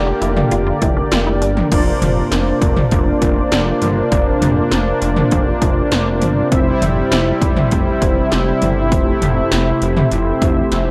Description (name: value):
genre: synth-pop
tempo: 100 BPM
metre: 4/4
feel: straight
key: unclear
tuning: A4 = 440 Hz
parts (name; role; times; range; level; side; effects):
- mellow synth brass; accompaniment; 0.0-10.9 s; C4 to E5; -22 LUFS; equal; chorus
- brassy analog pad; sustained chords; 0.0-10.9 s; C3 to G4; -23 LUFS; equal; chorus, tremolo
- chorused synth bass; bass; 0.0-10.9 s; F1 to G1; -22 LUFS; equal; none
- resonant blip pluck; arpeggios; 0.1-1.6 s; D4 to F4; -28 LUFS; equal; chorus, phaser, tape echo
- 80s electronic pad drums; drums; 0.2-10.9 s; crash cymbal, hi-hat, kick drum, snare drum, toms; -20 LUFS; equal; gated reverb on snare and toms
room: light reverb, digital ambience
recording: none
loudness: -16 LUFS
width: mono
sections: 0.0-1.7 A section; 1.7-10.9 A section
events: drum fill 10.7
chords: 0.0 Gm/F; 1.7 Bbadd9/F; 6.5 C/F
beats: 0.52 1.12 | 1.72 2.32 2.92 3.52 | 4.12 4.72 5.32 5.92 | 6.52 7.12 7.72 8.32 | 8.92 9.52 10.12 10.72